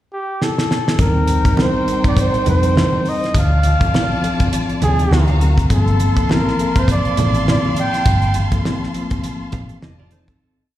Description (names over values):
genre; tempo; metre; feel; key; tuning
lush 1970s-style soul; 102 BPM; 4/4; swing 58% on 16ths; G minor; A4 = 436 Hz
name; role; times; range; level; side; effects
warm flugelhorn; melody; 0.1-8.4 s; G4 to G5; -21 LUFS; right 1 dB; slapback echo
damped 70s drum kit; drums; 0.4-10.4 s; hi-hat, kick drum, snare drum; -18 LUFS; equal; none
warm symphonic violin section; second line; 1.0-10.4 s; Eb4 to C6; -26 LUFS; left 2 dB; slapback echo, analog delay
mellow reed electric piano; accompaniment; 1.0-10.4 s; F3 to Bb4; -22 LUFS; left 2 dB; fast tremolo, slapback echo
hollow-body short-scale fingered electric bass; bass; 1.0-10.3 s; F1 to F2; -16 LUFS; equal; none
congas; percussion; 1.0-10.3 s; none; -26 LUFS; right 2 dB; none
mellow electric guitar; riff; 9.5-10.6 s; C4 to F5; -48 LUFS; right 9 dB; none
room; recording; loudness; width
light reverb; live gig heard through the venue's PA, recital hall reverb; -14 LUFS; side -13 dB against mid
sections
0.0-1.0 pickup bar; 1.0-10.4 pre-chorus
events
drum fill 0.4-1.0; fade-out 8.1-10.4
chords
0.0 N.C.; 1.0 Eb6; 3.3 Dm7; 5.1 D7alt; 5.7 Gm11; 9.8 F7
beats
0.40 | 0.99 1.57 2.16 2.75 | 3.34 3.93 4.52 5.11 | 5.70 6.29 6.88 7.47 | 8.06 8.65 9.24 9.83